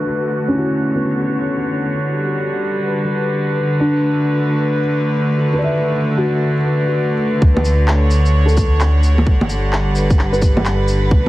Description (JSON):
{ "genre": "future garage", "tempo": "130 BPM", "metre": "4/4", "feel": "swing 64% on 16ths", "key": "unclear", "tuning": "A4 = 439 Hz", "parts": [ { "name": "felt-muted upright piano", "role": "accompaniment", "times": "0.0-11.3 s", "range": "B3 to E5", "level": "-22 LUFS", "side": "equal", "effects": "vintage 12-bit sampler grit, sidechain pumping, tape echo" }, { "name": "rich chamber string section", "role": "sustained chords", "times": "0.0-11.3 s", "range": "D3 to F#5", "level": "-18 LUFS", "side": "equal", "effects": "sidechain pumping" }, { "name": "dark detuned saw bass", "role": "bass", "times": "7.4-11.3 s", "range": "G1 to D2", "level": "-15 LUFS", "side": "equal", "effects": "sidechain pumping" }, { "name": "electronic kick drum", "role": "drums", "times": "7.4-11.2 s", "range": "none", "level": "-13 LUFS", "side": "equal", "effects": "studio reverb" }, { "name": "electronic bongos, shaker and handclaps", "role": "drums", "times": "7.6-11.3 s", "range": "none", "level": "-21 LUFS", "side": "equal", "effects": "studio reverb" } ], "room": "light reverb, small room ambience", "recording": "heavily compressed radio sound, vinyl crackle, low-pass filter", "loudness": "-14 LUFS", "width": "side -16 dB against mid", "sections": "0.0-7.4 A section; 7.4-11.3 B section", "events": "filter sweep 0.0-7.4", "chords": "0.0 Dmaj7; 1.9 Gmaj7; 3.7 Bm7; 7.4 Dmaj7; 9.3 Gmaj7" }